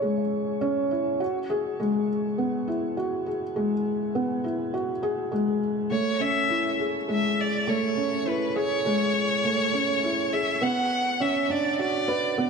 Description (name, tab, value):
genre	piano and strings electronica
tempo	102 BPM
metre	4/4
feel	straight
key	unclear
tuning	A4 = 442 Hz
part	felt-muted upright piano	riff	0.0-12.5 s	G#3 to C#5	-25 LUFS	equal	shimmer reverb, ping-pong delay
part	rich violin	melody	5.9-12.5 s	B4 to F#5	-25 LUFS	equal	shimmer reverb, ping-pong delay
room	moderate echo chamber reverb, RT60 2.7 s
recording	none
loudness	-23 LUFS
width	side -5 dB against mid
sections	0.0-12.5 A section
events	none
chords	0.0 C#m; 1.2 Eadd9; 5.9 Amaj7; 10.6 Bmadd9